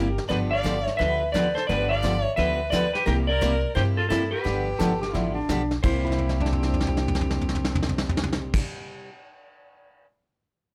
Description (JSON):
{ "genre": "country, western swing", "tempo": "174 BPM", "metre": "4/4", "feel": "swing 64% on 8ths", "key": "C major", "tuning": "A4 = 442 Hz", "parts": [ { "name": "clean lap steel guitar", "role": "melody", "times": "0.0-8.5 s", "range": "E4 to F5", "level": "-29 LUFS", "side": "equal", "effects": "none" }, { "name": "clear fiddle", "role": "second line", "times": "0.0-8.5 s", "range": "E4 to D5", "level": "-36 LUFS", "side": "equal", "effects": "none" }, { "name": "pedal steel guitar", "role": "second line", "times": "0.0-0.2, 4.8-8.5 s", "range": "C4 to A4", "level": "-33 LUFS", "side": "equal", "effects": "none" }, { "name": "picked steel-string acoustic guitar", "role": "accompaniment", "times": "0.0-9.1 s", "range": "C3 to G4", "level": "-32 LUFS", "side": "equal", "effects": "none" }, { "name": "upright bass", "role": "bass", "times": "0.0-8.5 s", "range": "G1 to G2", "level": "-30 LUFS", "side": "equal", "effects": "none" }, { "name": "vintage brush drum kit", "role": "drums", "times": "0.2-10.1 s", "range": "brushed snare drum, crash cymbal, hi-hat, kick drum, snare drum, toms", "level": "-31 LUFS", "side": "equal", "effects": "none" } ], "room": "light reverb", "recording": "none", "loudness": "-24 LUFS", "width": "mono", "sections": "0.0-5.8 A section; 5.8-8.6 B section", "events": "drum fill 6.0-8.5", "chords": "0.3 G7; 3.1 C9; 4.5 G9; 5.8 C9" }